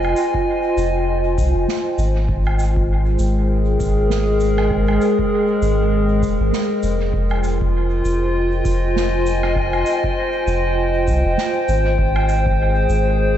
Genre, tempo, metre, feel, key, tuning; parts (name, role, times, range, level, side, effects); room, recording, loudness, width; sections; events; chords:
ambient dub; 99 BPM; 4/4; swing 58% on 16ths; F minor; A4 = 439 Hz
warbly tape-like pad; sustained chords; 0.0-13.4 s; Ab3 to Ab5; -19 LUFS; equal; chorus, built-in reverb
soft dub sub bass; bass; 0.0-13.4 s; Eb1 to C2; -19 LUFS; equal; tube saturation
woodblock, cabasa and snare drum; drums; 0.0-13.0 s; -30 LUFS; right 3 dB; dub echo
electronic kick drum; drums; 0.3-12.6 s; -25 LUFS; equal
moderate cathedral reverb, RT60 5.6 s; dreamy mix soaked in reverb, nothing above 8.0 kHz; -16 LUFS; side -10 dB against mid
0.0-13.4 A section
0.0 Fm9; 2.3 Abmaj9; 7.1 Fm9; 12.0 Abmaj9